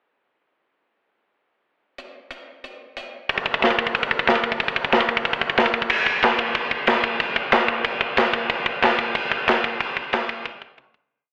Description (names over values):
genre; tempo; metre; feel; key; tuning
metal; 184 BPM; 4/4; straight; none; none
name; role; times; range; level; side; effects
tight metal drum kit; drums; 2.0-11.0 s; crash cymbal, hi-hat, kick drum, snare drum, toms; -21 LUFS; equal; none
room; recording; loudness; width
light reverb; telephone sound; -21 LUFS; mono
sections
2.0-3.3 pickup bar; 3.3-5.9 intro; 5.9-11.1 riff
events
fade-out 9.5-11.1; drum fill 10.8-11.1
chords
none